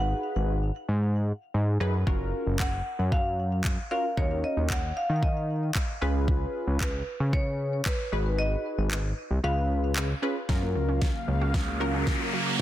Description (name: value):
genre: dance-pop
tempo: 114 BPM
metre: 4/4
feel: straight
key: F# major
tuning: A4 = 440 Hz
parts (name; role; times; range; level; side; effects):
- marimba with medium hard mallets; melody; 0.0-10.2 s; B4 to F#5; -33 LUFS; equal; ping-pong delay
- funky polysynth comp; accompaniment; 0.0-12.6 s; C#4 to B4; -32 LUFS; equal; chorus
- fat analog bass; bass; 0.0-12.2 s; F#1 to D#3; -27 LUFS; equal; sidechain pumping
- smooth R&B drum kit; drums; 2.1-12.2 s; handclaps, kick drum, snare drum; -29 LUFS; equal; none
- sweeping resonant pad; sustained chords; 10.5-12.6 s; C#3 to E#5; -33 LUFS; right 1 dB; chorus, sidechain pumping
- wide unison pluck; arpeggios; 10.5-12.5 s; F#3 to F#4; -37 LUFS; right 2 dB; sidechain pumping, ping-pong delay
- riser; sound effects; 11.3-12.6 s; none; -32 LUFS; right 1 dB; none
room: light reverb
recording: dense, heavily limited modern master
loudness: -25 LUFS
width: side -13 dB against mid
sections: 0.0-10.5 A section; 10.5-12.6 B section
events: kick muted 8.4-10.5; build-up 10.5-12.6; drum fill 10.5-12.6; filter sweep 10.5-12.6; riser 11.3-12.6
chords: 0.0 G#m7; 2.1 F#maj7; 4.2 D#m7; 6.0 C#7; 8.1 G#m7; 9.4 C#7; 10.5 F#maj7